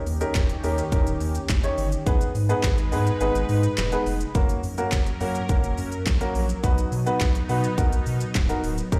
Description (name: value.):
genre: dance-pop.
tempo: 105 BPM.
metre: 4/4.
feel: straight.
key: unclear.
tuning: A4 = 440 Hz.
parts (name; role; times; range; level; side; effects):
warm analog pad; sustained chords; 0.0-9.0 s; D#3 to B4; -35 LUFS; equal; chorus, sidechain pumping.
saturated sub bass; bass; 0.1-9.0 s; C#1 to B2; -28 LUFS; equal; sidechain pumping.
pop drum kit; drums; 0.1-9.0 s; handclaps, hi-hat, kick drum, shaker, snare drum; -27 LUFS; equal; none.
warm baby grand piano; accompaniment; 0.2-9.0 s; A#3 to C#5; -30 LUFS; equal; sidechain pumping.
room: light reverb, digital ambience.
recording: played on a big sound system in a bare room, large studio reverb.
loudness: -24 LUFS.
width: mono.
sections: 0.0-9.0 A section.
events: kick muted 3.2-4.3.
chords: 0.0 D#7; 2.1 G#m; 4.3 F#; 6.6 B.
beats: 0.35 0.92 1.49 | 2.06 2.64 3.21 3.78 | 4.35 4.92 5.49 6.06 | 6.64 7.21 7.78 8.35 | 8.92.